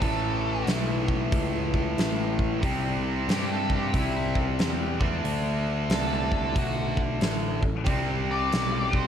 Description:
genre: blues rock power trio and southern rock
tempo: 92 BPM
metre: 4/4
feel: swing 63% on 8ths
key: unclear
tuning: A4 = 441 Hz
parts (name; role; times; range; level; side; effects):
- octave-fuzz lead guitar; melody; 0.0-9.1 s; E4 to D5; -31 LUFS; equal; distortion
- tight distorted guitar; riff; 0.0-9.1 s; A2 to D4; -28 LUFS; left 1 dB; distortion
- fuzz picked electric bass; bass; 0.0-9.1 s; A1 to G2; -30 LUFS; equal; overdrive
- big rock drum kit; drums; 0.0-9.0 s; hi-hat, kick drum, snare drum; -28 LUFS; equal; none
room: light reverb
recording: none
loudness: -24 LUFS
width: side -8 dB against mid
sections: 0.0-9.1 A section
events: none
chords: 0.0 A; 2.6 C; 4.9 D5; 7.9 C5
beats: | 0.02 0.68 1.33 1.98 | 2.63 3.29 3.94 4.59 | 5.25 5.90 6.56 7.21 | 7.86 8.52

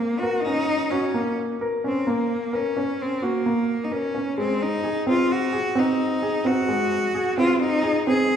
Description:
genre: contemporary instrumental, contemporary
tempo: 130 BPM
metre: 5/4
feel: straight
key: Gb lydian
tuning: A4 = 440 Hz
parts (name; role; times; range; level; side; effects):
- bright cello; melody; 0.0-8.4 s; Bb3 to Ab4; -24 LUFS; equal; none
- felt-muted upright piano; arpeggios; 0.0-8.4 s; Ab3 to Bb4; -23 LUFS; equal; none
room: wet scoring stage reverb, RT60 1.9 s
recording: heard from further back in the room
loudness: -21 LUFS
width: side -8 dB against mid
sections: 0.0-8.4 A section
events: none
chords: 0.0 Gb (rootless); 4.4 Ab7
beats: 0.22 0.68 1.15 1.61 | 2.07 2.53 2.99 3.45 3.91 | 4.38 4.84 5.30 5.76 6.22 | 6.68 7.14 7.61 8.07

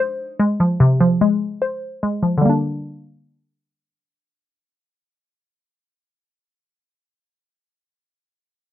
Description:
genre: hip hop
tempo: 147 BPM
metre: 4/4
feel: half-time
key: G phrygian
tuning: A4 = 441 Hz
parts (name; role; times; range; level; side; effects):
- hollow square pluck; accompaniment; 0.0-7.2 s; C3 to C5; -16 LUFS; left 1 dB; chorus, low-pass filter
room: moderate booth ambience, RT60 0.3 s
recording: low-pass filter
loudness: -16 LUFS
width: side -12 dB against mid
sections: 0.0-2.4 A section; 2.4-5.7 B section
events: filter sweep 0.0-2.4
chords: 0.0 Fm; 2.4 Gm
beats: 0.39 | 0.80 1.21 1.62 2.03 | 2.43 2.84 3.25 3.66 | 4.07 4.47 4.88 5.29

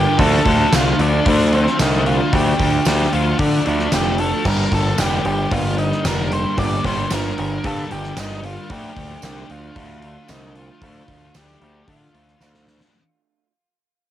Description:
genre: rock, shoegaze and dream pop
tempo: 113 BPM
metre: 4/4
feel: straight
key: unclear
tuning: A4 = 444 Hz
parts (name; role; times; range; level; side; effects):
- octave-fuzz lead guitar; melody; 0.0-12.6 s; C4 to D5; -23 LUFS; equal; distortion, cassette tape
- clean electric guitar; arpeggios; 0.0-12.9 s; F3 to D4; -34 LUFS; right 10 dB; none
- electric guitar through a small old amp; riff; 0.0-12.9 s; G2 to G4; -27 LUFS; right 13 dB; reverse reverb, cassette tape
- thick fuzz guitar; riff; 0.0-12.9 s; G2 to D4; -23 LUFS; left 6 dB; distortion, ensemble chorus, cassette tape
- growling picked electric bass; bass; 0.0-12.8 s; F1 to D3; -20 LUFS; equal; overdrive
- gated 80s drum kit; drums; 0.2-12.9 s; crash cymbal, hi-hat, kick drum, snare drum; -23 LUFS; equal; cassette tape
- tambourine; percussion; 0.7-12.5 s; none; -31 LUFS; right 13 dB; none
room: little or no reverb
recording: home recording on cassette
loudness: -15 LUFS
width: side -11 dB against mid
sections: 0.0-12.9 A section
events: fade-out 0.0-12.9; drum fill 12.4-12.9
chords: 0.2 Dm; 4.5 Gm; 8.7 Dm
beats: | 0.20 0.73 1.26 1.79 | 2.33 2.86 3.39 3.92 | 4.46 4.99 5.52 6.05 | 6.58 7.11 7.64 8.17 | 8.70 9.23 9.76 10.29 | 10.82 11.35 11.88 12.41

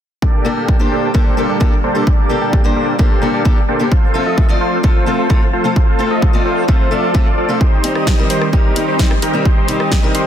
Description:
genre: EDM, festival progressive house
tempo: 130 BPM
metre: 4/4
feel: straight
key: G minor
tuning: A4 = 445 Hz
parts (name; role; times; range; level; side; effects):
- lush unison pad; sustained chords; 1.0-10.3 s; Eb3 to D5; -22 LUFS; equal; chorus, phaser, sidechain pumping
- dense compressed supersaw; riff; 0.2-10.3 s; Bb3 to G5; -18 LUFS; right 1 dB; sidechain pumping, low-pass filter, ping-pong delay
- electronic kick drum; drums; 0.2-10.0 s; none; -13 LUFS; equal; overdrive
- fingerpicked steel-string acoustic guitar; accompaniment; 0.4-10.3 s; G3 to D5; -20 LUFS; left 2 dB; sidechain pumping, ping-pong delay
- pop drum kit; drums; 7.8-10.2 s; hi-hat, rim click, snare drum; -22 LUFS; equal; none
room: little or no reverb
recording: dense, heavily limited modern master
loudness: -12 LUFS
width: side -10 dB against mid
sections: 0.2-10.3 A section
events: none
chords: 0.2 Gmadd9; 3.9 F; 7.6 Cm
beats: | 0.22 0.69 1.15 1.61 | 2.07 2.53 2.99 3.45 | 3.92 4.38 4.84 5.30 | 5.76 6.22 6.68 7.15 | 7.61 8.07 8.53 8.99 | 9.45 9.92

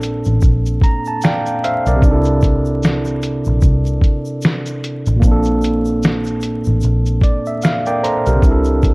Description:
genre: lo-fi hip hop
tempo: 75 BPM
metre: 4/4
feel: swing 59% on 16ths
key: unclear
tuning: A4 = 440 Hz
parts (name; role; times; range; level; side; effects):
- tine electric piano; accompaniment; 0.0-8.9 s; Bb2 to Bb5; -17 LUFS; right 1 dB; cassette tape, low-pass filter
- vintage muted picked electric bass; bass; 0.0-8.9 s; A1 to C2; -17 LUFS; equal; none
- lo-fi sampler-style drum kit; drums; 0.0-8.9 s; hi-hat, kick drum, shaker, snare drum; -14 LUFS; equal; none
- egg shaker; percussion; 0.0-8.9 s; none; -43 LUFS; left 4 dB; none
room: light reverb, digital ambience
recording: dark, warm production, vinyl crackle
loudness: -13 LUFS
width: side -26 dB against mid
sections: 0.0-8.9 A section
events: tine electric piano fill 0.4-2.0, 6.8-8.4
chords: 0.0 Bbmaj7; 2.0 C69; 5.2 Bbmaj7; 8.4 C69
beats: 0.42 1.22 | 2.02 2.82 3.62 4.42 | 5.22 6.02 6.82 7.62 | 8.42

